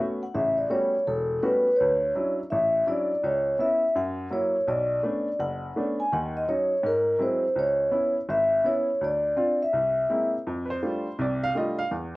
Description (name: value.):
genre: jazz.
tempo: 166 BPM.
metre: 4/4.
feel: swing 64% on 8ths.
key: unclear.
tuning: A4 = 441 Hz.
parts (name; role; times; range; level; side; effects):
clear upright piano; accompaniment; 0.0-12.2 s; E1 to F5; -29 LUFS; equal; none.
vibraphone with soft mallets; melody; 0.2-10.3 s; A4 to G#5; -23 LUFS; equal; none.
room: moderate club reverb, RT60 0.7 s.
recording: worn, warbling old tape, cassette tape, warbly pitch drift.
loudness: -23 LUFS.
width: side -20 dB against mid.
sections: 0.0-10.4 A section; 10.4-12.2 B section.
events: none.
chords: 0.3 A13; 1.8 Dmaj9; 3.2 C#m7; 3.9 F#7; 4.7 Bm9; 6.1 D#m7; 6.8 G#7b13; 7.6 C#m7; 9.0 Dm7; 9.7 Caug7; 10.4 F69.